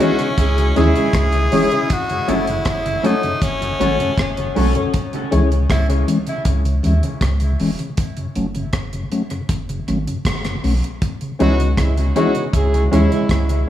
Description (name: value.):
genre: dub reggae.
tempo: 79 BPM.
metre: 4/4.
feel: straight.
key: C# minor.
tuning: A4 = 436 Hz.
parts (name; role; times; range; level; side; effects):
raspy tenor saxophone; melody; 0.0-5.9 s; C#4 to G#4; -23 LUFS; left 1 dB; dub echo.
warm horn section; second line; 0.0-1.5, 11.4-13.6 s; G#3 to G#4; -24 LUFS; right 2 dB; dub echo.
mellow electric guitar; accompaniment; 0.0-4.7, 11.4-13.2 s; G#3 to A4; -25 LUFS; right 6 dB; dub echo.
mellow tonewheel organ; accompaniment; 0.0-13.6 s; F#2 to C#4; -24 LUFS; left 2 dB; slow rotary speaker.
dark upright piano; stabs; 0.0-5.5, 11.4-13.2 s; C#4 to C#5; -23 LUFS; left 6 dB; dub echo.
deep reggae drum kit; drums; 0.0-13.7 s; hi-hat, kick drum, rim click; -23 LUFS; equal; none.
soft dub sub bass; bass; 0.4-13.6 s; E1 to D#2; -18 LUFS; equal; none.
room: light reverb, studio reverb.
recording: echo-heavy mix.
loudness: -16 LUFS.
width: side -12 dB against mid.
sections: 0.0-13.7 A section.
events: break 1.9-11.0.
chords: 0.0 C#m; 1.9 F#m; 4.9 C#m; 8.0 F#m; 11.0 C#m.